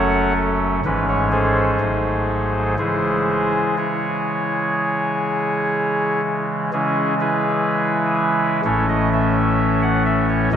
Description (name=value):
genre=classical, chorale-style piece for pipe organ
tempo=62 BPM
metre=4/4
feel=straight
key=C# minor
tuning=A4 = 440 Hz
part: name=chamber organ, soft reed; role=solo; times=0.0-10.6 s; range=D#1 to F#5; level=-17 LUFS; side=equal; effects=none
room=wet church reverb, RT60 3.0 s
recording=none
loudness=-17 LUFS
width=side -9 dB against mid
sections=0.0-6.7 A section; 6.7-10.6 A section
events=none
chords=0.0 F#m; 0.8 C#m/G#; 1.8 G#7b9; 2.8 C#m; 8.7 A